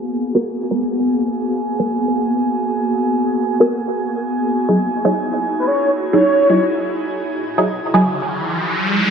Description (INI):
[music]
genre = drum and bass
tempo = 166 BPM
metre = 4/4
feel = swing 53% on 16ths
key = G# minor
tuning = A4 = 445 Hz
[part]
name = ethereal airy pad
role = sustained chords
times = 0.0-8.7 s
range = A#3 to G#4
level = -20 LUFS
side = equal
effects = ensemble chorus, built-in reverb, vintage 12-bit sampler grit
[part]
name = drifting glass-harmonics texture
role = texture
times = 0.2-8.7 s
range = G#5 to G#6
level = -27 LUFS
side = right 4 dB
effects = chorus, built-in reverb
[part]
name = filtered dub chord stab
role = stabs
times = 0.3-8.0 s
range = F#3 to A#4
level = -17 LUFS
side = right 1 dB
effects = phaser, analog chorus, dub echo
[part]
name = breathy flute-like synth lead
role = melody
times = 5.6-6.6 s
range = B4 to C#5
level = -17 LUFS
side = equal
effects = ensemble chorus, dub echo
[part]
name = riser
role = sound effects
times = 8.0-9.1 s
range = none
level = -19 LUFS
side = equal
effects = none
[sound]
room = wet echo chamber reverb, RT60 1.9 s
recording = vinyl crackle, low-pass filter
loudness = -15 LUFS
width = side -6 dB against mid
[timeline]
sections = 0.0-9.1 A section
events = filter sweep on synth stab 0.0-9.1; filter sweep 0.0-9.1; riser 8.0-9.1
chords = 0.0 G#m9; 4.4 Emaj9